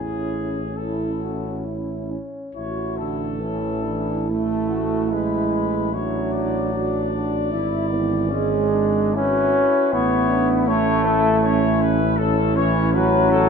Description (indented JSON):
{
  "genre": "classical, hymn-like piece for brass band",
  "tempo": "63-81 BPM",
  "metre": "3/4",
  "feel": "rubato",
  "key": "A major",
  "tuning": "A4 = 440 Hz",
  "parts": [
    { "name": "mellow trumpet section", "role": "melody", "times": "0.0-13.5 s", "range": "G#4 to D5", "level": "-27 LUFS", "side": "left 6 dB", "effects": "none" },
    { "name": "mellow French horn section", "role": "second line", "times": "0.0-13.5 s", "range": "C#4 to G#4", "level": "-26 LUFS", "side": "right 9 dB", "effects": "none" },
    { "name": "clear trombone section", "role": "accompaniment", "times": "0.0-13.5 s", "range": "B3 to F#4", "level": "-28 LUFS", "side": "left 7 dB", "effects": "none" },
    { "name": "mellow trombone", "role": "accompaniment", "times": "0.0-13.5 s", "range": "D3 to F#4", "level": "-23 LUFS", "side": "right 1 dB", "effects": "none" },
    { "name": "mellow tuba", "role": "bass", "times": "0.0-13.5 s", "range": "G#1 to A1", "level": "-25 LUFS", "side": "equal", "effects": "none" }
  ],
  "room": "moderate recital hall reverb, RT60 1.6 s",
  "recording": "dark, warm production, nothing above 10.6 kHz",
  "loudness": "-19 LUFS",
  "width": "side -6 dB against mid",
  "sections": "0.0-2.5 A section; 2.5-13.5 B section",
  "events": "none",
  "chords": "0.0 A; 5.1 Bm7/A; 7.5 E7/G#; 9.9 A; 12.2 F#m7/A"
}